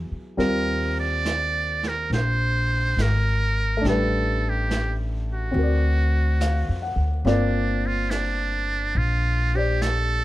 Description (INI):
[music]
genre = jazz ballad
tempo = 70 BPM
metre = 4/4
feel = swing 69% on 8ths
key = G minor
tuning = A4 = 441 Hz
[part]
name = warm grand piano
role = accompaniment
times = 0.0-10.2 s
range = F#3 to F#5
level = -27 LUFS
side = left 1 dB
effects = none
[part]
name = upright bass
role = bass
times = 0.0-10.2 s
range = G1 to E#2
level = -23 LUFS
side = equal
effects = none
[part]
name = trumpet with metal mute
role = melody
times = 0.4-10.2 s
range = D4 to D5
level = -26 LUFS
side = right 3 dB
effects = none
[part]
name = vintage brush drum kit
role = drums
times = 0.4-10.2 s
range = brushed snare drum, hi-hat, snare drum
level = -34 LUFS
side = right 2 dB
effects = none
[sound]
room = little or no reverb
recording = none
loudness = -21 LUFS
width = side -16 dB against mid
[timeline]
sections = 0.0-10.2 A section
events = none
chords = 0.4 Ebmaj9; 3.8 A9sus4; 5.5 D7alt; 7.3 Gm7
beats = | 0.39 1.26 2.12 2.98 | 3.83 4.69 5.55 6.40 | 7.25 8.11 8.96 9.81